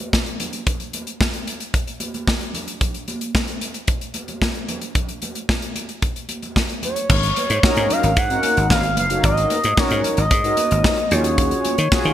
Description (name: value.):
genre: early-eighties boogie funk.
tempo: 112 BPM.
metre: 4/4.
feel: straight.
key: unclear.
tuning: A4 = 440 Hz.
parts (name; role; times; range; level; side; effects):
modern studio drum kit; drums; 0.0-12.1 s; crash cymbal, hi-hat, kick drum, snare drum; -21 LUFS; equal; gated reverb.
congas; percussion; 0.0-11.8 s; none; -32 LUFS; right 3 dB; none.
expressive portamento lead; melody; 6.8-12.1 s; Db5 to Gb5; -20 LUFS; equal; chorus.
dry thumbed slap bass; bass; 7.1-12.1 s; Gb1 to Eb3; -20 LUFS; equal; none.
mellow synth brass; accompaniment; 7.6-12.1 s; Cb4 to Bb4; -23 LUFS; left 1 dB; chorus.
room: light reverb, small room reverb.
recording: bright 1980s-style digital production.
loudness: -18 LUFS.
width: side -11 dB against mid.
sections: 0.0-7.1 A section; 7.1-12.1 B section.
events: none.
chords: 0.0 N.C.; 7.1 Ab9sus4; 11.1 Ebm11.